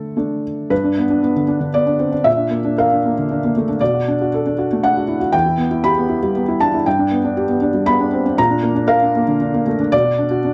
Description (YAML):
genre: neoclassical minimalist piano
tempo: 117 BPM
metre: 3/4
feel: rubato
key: G major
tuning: A4 = 440 Hz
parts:
  - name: felt-muted upright piano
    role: solo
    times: 0.0-10.5 s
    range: E2 to B5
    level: -17 LUFS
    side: equal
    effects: none
room: wet studio reverb, RT60 0.6 s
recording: none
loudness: -17 LUFS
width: mono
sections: 0.7-10.5 A section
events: none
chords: 0.0 D5; 0.7 G; 2.3 Bb; 3.8 Bm7; 5.3 Em; 6.9 G; 8.4 Bb; 9.9 Bm